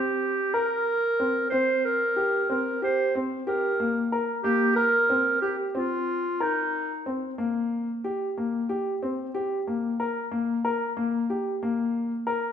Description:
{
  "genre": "contemporary instrumental, contemporary",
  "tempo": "184 BPM (eighths)",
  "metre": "9/8",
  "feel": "straight",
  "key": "unclear",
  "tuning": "A4 = 440 Hz",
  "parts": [
    { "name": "warm clarinet", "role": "melody", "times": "0.0-7.1 s", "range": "Eb4 to C5", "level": "-24 LUFS", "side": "right 2 dB", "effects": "none" },
    { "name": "warm grand piano", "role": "arpeggios", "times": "0.0-12.5 s", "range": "Bb3 to Bb4", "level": "-27 LUFS", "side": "left 2 dB", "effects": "none" }
  ],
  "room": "wet recital hall reverb, RT60 1.6 s",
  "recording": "minimal, uncompressed stereo recording",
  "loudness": "-24 LUFS",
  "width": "side -8 dB against mid",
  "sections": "0.0-12.5 A section",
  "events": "none",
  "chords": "0.0 Bbsus2"
}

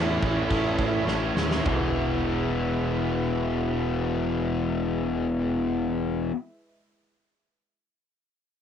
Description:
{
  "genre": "quiet-loud alternative rock",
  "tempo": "free time",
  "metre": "none",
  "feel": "none",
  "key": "E major",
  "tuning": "A4 = 440 Hz",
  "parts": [
    { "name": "bluesy overdriven lead guitar", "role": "melody", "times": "0.0-1.0 s", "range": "E4", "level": "-33 LUFS", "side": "right 3 dB", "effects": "distortion, cassette tape" },
    { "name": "warm analog pad", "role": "sustained chords", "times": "0.0-6.3 s", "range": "G#3 to A5", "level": "-37 LUFS", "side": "right 2 dB", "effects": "chorus, cassette tape" },
    { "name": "cranked stack guitar", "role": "riff", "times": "0.0-6.4 s", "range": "E2 to E4", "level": "-31 LUFS", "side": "right 13 dB", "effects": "overdrive, cassette tape" },
    { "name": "fuzz guitar", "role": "riff", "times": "0.0-6.4 s", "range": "A2 to E4", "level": "-27 LUFS", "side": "left 7 dB", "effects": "distortion, cassette tape" },
    { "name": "growling picked electric bass", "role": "bass", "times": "0.0-6.3 s", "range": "E1 to A2", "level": "-31 LUFS", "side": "right 1 dB", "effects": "overdrive" },
    { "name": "huge arena drum kit", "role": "drums", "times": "0.2-1.8 s", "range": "crash cymbal, kick drum, snare drum, toms", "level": "-29 LUFS", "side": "right 1 dB", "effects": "cassette tape" }
  ],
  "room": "light reverb",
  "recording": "home recording on cassette",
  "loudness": "-24 LUFS",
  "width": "side -8 dB against mid",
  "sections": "0.0-1.7 A section; 1.7-6.4 B section",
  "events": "slowing down 0.0-1.7; drum fill 1.1-1.7",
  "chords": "0.0 A; 1.7 E"
}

